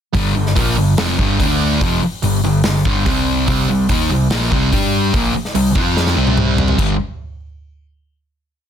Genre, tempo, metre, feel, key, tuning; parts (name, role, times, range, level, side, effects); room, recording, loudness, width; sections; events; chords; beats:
hard rock; 145 BPM; 4/4; straight; A4 = 439 Hz
sludgy distorted guitar; riff; 0.1-7.0 s; F2 to G4; -19 LUFS; left 10 dB; overdrive
sludgy distorted guitar; riff; 0.1-6.9 s; F2 to G4; -19 LUFS; right 10 dB; overdrive
picked electric bass; bass; 0.1-7.0 s; F1 to G2; -20 LUFS; equal
big rock drum kit; drums; 0.1-6.9 s; crash cymbal, hi-hat, kick drum, snare drum, toms; -20 LUFS; equal
light reverb; dense, heavily limited modern master; -13 LUFS; side -9 dB against mid
0.1-6.8 riff; 6.8-8.4 final chord
drum fill 6.0-6.8
0.1 G5; 1.4 D5; 1.8 G5; 3.1 C5; 4.7 G5; 5.1 C5; 5.8 F5; 6.2 C5; 6.8 G5
| 0.14 0.56 0.98 1.40 | 1.81 2.23 2.65 3.06 | 3.48 3.90 4.31 4.72 | 5.14 5.55 5.96 6.37 | 6.78